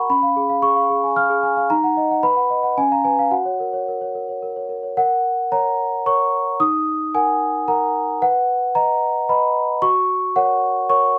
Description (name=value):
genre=classical, lullaby for celesta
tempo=112 BPM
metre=3/4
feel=straight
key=F# major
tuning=A4 = 441 Hz
part: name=large celesta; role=solo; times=0.0-11.2 s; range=C#4 to E#6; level=-19 LUFS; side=equal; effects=none
room=light reverb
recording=none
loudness=-19 LUFS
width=mono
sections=0.0-5.0 A section; 5.0-11.2 B section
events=none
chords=0.1 C#7; 1.7 D#m; 2.2 B; 2.8 C#7; 3.3 F#; 5.0 F#/A#; 6.6 D#m; 8.2 B; 9.8 F#